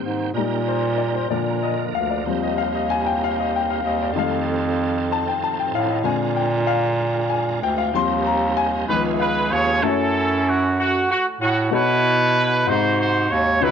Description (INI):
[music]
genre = gospel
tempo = 63 BPM (dotted quarters)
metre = 6/8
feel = straight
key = Eb major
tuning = A4 = 443 Hz
[part]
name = warm baby grand piano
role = accompaniment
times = 0.0-13.7 s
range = G#2 to C6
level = -24 LUFS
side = left 10 dB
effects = none
[part]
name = bright tonewheel organ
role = sustained chords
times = 0.0-9.8 s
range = D3 to G5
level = -30 LUFS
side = right 13 dB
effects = fast rotary speaker, overdrive, chorus vibrato
[part]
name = warm bass clarinet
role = bass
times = 0.0-13.7 s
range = C#2 to B2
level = -22 LUFS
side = right 2 dB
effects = none
[part]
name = mellow horn section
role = melody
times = 8.9-13.7 s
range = C#4 to Db5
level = -19 LUFS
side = right 2 dB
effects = none
[sound]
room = moderate spring reverb, RT60 1.4 s, small room ambience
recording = 1960s-style stereo with parts hard left and right, nothing above 7.8 kHz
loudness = -18 LUFS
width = side -7 dB against mid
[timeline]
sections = 0.0-9.8 A section; 9.8-13.7 B section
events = grand piano solo 0.0-9.8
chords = 0.3 Eb/Bb; 1.3 Bb; 2.2 Eb6; 4.1 F7; 6.0 Bb7; 7.9 Eb6; 8.9 Db7; 9.8 F#m9; 11.7 B9sus4; 12.7 G#7